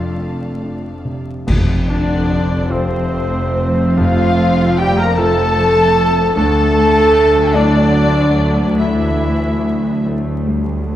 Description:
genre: cinematic, emotional film score for orchestra.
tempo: 49 BPM (dotted quarters).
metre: 6/8.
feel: uneven beats, rubato.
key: F major.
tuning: A4 = 440 Hz.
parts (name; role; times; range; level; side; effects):
muted studio violin section; melody; 0.0-10.0 s; C5 to Bb5; -23 LUFS; left 5 dB; none.
clear clarinet; second line; 0.0-10.0 s; C4 to Bb4; -21 LUFS; right 1 dB; none.
muted studio violin section; second line; 0.0-10.0 s; C4 to F5; -24 LUFS; left 1 dB; none.
clear grand piano; accompaniment; 0.0-11.0 s; F1 to A4; -22 LUFS; left 1 dB; none.
muted studio viola section; accompaniment; 0.0-11.0 s; F#3 to D4; -24 LUFS; right 1 dB; none.
muted studio cello section; bass; 0.0-11.0 s; D2 to F2; -21 LUFS; equal; none.
muted studio double bass section; bass; 0.0-11.0 s; F1 to D2; -19 LUFS; right 1 dB; none.
clash cymbals and concert bass drum; percussion; 1.5-3.1 s; none; -20 LUFS; equal; none.
silver concert flute; second line; 1.9-10.0 s; C5 to Bb5; -24 LUFS; left 2 dB; none.
warm cor anglais; second line; 1.9-10.0 s; C4 to Bb4; -25 LUFS; right 1 dB; none.
mellow French horn section; sustained chords; 1.9-10.0 s; C3 to Bb3; -21 LUFS; left 1 dB; none.
room: wet scoring stage reverb, RT60 1.6 s.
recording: dark, warm production, vinyl crackle.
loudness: -12 LUFS.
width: side -12 dB against mid.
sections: 0.0-1.5 A section; 1.5-11.0 B section.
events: band accent 1.5-2.3.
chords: 0.0 F6; 1.5 F; 6.4 Dadd9.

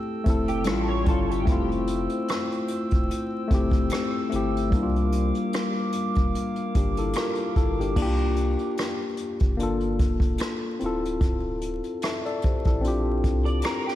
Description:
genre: lo-fi hip hop.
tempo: 74 BPM.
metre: 4/4.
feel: swing 55% on 16ths.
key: unclear.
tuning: A4 = 440 Hz.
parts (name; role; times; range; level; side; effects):
mellow tine electric piano; accompaniment; 0.0-14.0 s; G3 to E5; -26 LUFS; left 2 dB; overdrive, cassette tape, low-pass filter.
glass harmonica; sustained chords; 0.0-7.9 s; G4 to E6; -34 LUFS; right 3 dB; stereo widening, low-pass filter.
warm sub bass; bass; 0.3-13.6 s; D1 to C2; -28 LUFS; equal; none.
vintage brush drum kit; drums; 0.3-14.0 s; crash cymbal, hi-hat, kick drum, rim click; -26 LUFS; equal; none.
electric guitar through a small old amp; second line; 0.5-1.7, 13.5-14.0 s; G4 to D5; -32 LUFS; right 2 dB; ensemble chorus, low-pass filter, ping-pong delay.
finger snaps; percussion; 0.7-13.9 s; none; barely audible; none; none.
room: moderate lush hall reverb, RT60 2.3 s.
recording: dreamy mix soaked in reverb, vinyl crackle.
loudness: -22 LUFS.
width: side -13 dB against mid.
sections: 0.0-8.0 A section; 8.0-14.0 B section.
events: none.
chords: 0.0 Fmaj7; 0.7 A7b13; 1.5 Fmaj9; 4.7 C9sus4; 9.6 Gm9; 10.8 Dm9; 12.8 Bb6.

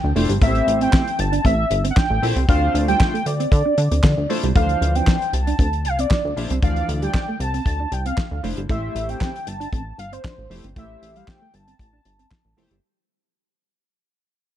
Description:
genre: early-eighties boogie funk.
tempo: 116 BPM.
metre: 4/4.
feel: straight.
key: D minor.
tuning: A4 = 440 Hz.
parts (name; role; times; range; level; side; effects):
warm velvety synth lead; melody; 0.0-12.6 s; C5 to A5; -24 LUFS; equal; chorus, slapback echo.
plucky analog bass; bass; 0.0-12.8 s; F1 to D3; -22 LUFS; equal; none.
chorused polysynth; accompaniment; 0.2-12.7 s; E3 to D5; -27 LUFS; left 2 dB; none.
mellow electric guitar; riff; 0.2-12.8 s; G3 to D4; -28 LUFS; right 5 dB; ensemble chorus.
damped 70s drum kit; drums; 0.2-12.8 s; handclaps, hi-hat, kick drum, snare drum; -20 LUFS; equal; none.
room: little or no reverb.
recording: dark, warm production.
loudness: -17 LUFS.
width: side -11 dB against mid.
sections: 0.0-4.6 A section; 4.6-12.8 B section.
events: fade-out 4.6-12.8.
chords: 0.4 Am7; 2.5 Dm9; 8.7 Am7.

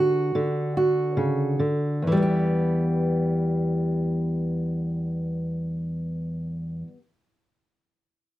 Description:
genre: folk, solo fingerstyle acoustic guitar.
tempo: 70 BPM.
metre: 4/4.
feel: rubato.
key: E dorian.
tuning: A4 = 440 Hz.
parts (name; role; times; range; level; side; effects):
fingerpicked steel-string acoustic guitar; solo; 0.0-7.0 s; E2 to G4; -23 LUFS; equal; none.
room: light reverb.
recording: dark, warm production.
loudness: -23 LUFS.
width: side -15 dB against mid.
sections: 0.0-2.0 A section; 2.0-5.5 B section.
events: slowing down 0.0-2.0.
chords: 0.0 Bm/D (rootless); 2.0 Em.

